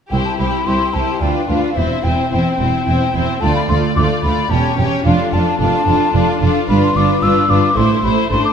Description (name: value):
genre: quick classical-period movement for symphony orchestra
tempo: 110 BPM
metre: 3/4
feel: rubato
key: C major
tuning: A4 = 440 Hz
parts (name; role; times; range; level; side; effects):
- warm studio violin section; melody; 0.1-8.5 s; A4 to D5; -24 LUFS; left 7 dB; none
- mellow hollow silver concert flute; second line; 0.1-8.5 s; E5 to E6; -19 LUFS; left 3 dB; none
- rich studio violin section; second line; 0.1-8.5 s; D4 to G4; -22 LUFS; left 4 dB; none
- rich studio viola section; accompaniment; 0.1-8.5 s; A3 to E4; -20 LUFS; right 2 dB; none
- rich studio cello section; bass; 0.1-8.4 s; C2 to A2; -20 LUFS; right 2 dB; none
- warm studio double bass section; bass; 0.1-8.4 s; E1 to D2; -20 LUFS; right 3 dB; none
room: moderate scoring stage reverb, RT60 2.0 s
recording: none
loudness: -13 LUFS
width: side -7 dB against mid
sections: 0.1-8.5 A section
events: none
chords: 0.1 C; 1.2 Bdim/D; 1.8 C/E; 3.4 Dm; 4.5 C#dim/E; 5.1 Dm/F; 6.7 G7; 7.8 Am